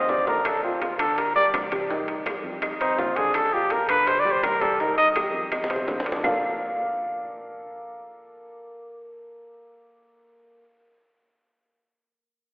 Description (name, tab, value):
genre	Afro-Cuban jazz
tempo	166 BPM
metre	4/4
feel	straight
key	Bb major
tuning	A4 = 440 Hz
part	warm trumpet	melody	0.0-5.1 s	C4 to Eb5	-22 LUFS	equal	none
part	warm baby grand piano	accompaniment	0.0-10.6 s	D3 to F5	-29 LUFS	equal	none
part	fingered electric bass	bass	0.0-10.6 s	G1 to F2	-46 LUFS	equal	none
part	bongos	percussion	0.1-6.3 s	none	-34 LUFS	equal	none
part	congas	percussion	0.1-6.3 s	none	-39 LUFS	equal	none
part	timbales	percussion	0.1-6.3 s	none	-32 LUFS	equal	none
part	claves	percussion	0.5-6.3 s	none	-36 LUFS	equal	none
room	wet church reverb, RT60 2.7 s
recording	recorded in a church or concert hall, telephone sound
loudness	-21 LUFS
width	side -37 dB against mid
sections	0.0-6.2 A section; 6.2-9.1 B section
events	drum fill 0.0-0.4, 5.5-6.2; trumpet solo 0.0-6.2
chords	0.4 Bb; 1.2 G5; 1.9 Cm; 2.6 F5; 3.3 Bb; 4.1 G5; 4.8 Cm; 5.5 F5; 6.2 Bbmaj7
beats	0.09 | 0.45 0.81 1.17 1.53 | 1.90 2.26 2.62 2.98 | 3.34 3.71 4.07 4.43 | 4.79 5.16 5.52 5.88 | 6.24 6.61 6.97 7.33 | 7.69 8.05 8.42 8.78